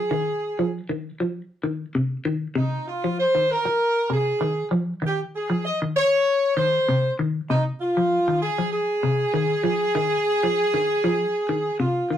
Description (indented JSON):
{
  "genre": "afrobeat",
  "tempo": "97 BPM",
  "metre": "4/4",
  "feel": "swing 55% on 16ths",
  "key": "F minor",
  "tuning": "A4 = 441 Hz",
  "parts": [
    { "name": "warm horn section", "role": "melody", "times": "0.0-12.2 s", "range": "Eb4 to Eb5", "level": "-21 LUFS", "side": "equal", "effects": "none" },
    { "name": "semi-hollow electric guitar", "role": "arpeggios", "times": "0.1-12.2 s", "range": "C3 to F3", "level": "-25 LUFS", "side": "left 1 dB", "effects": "phaser" }
  ],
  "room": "moderate studio reverb, RT60 0.5 s",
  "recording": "rough rehearsal-room recording, warm saturation",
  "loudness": "-21 LUFS",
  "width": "side -10 dB against mid",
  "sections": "0.0-12.2 A section",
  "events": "none",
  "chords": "0.0 Fm7"
}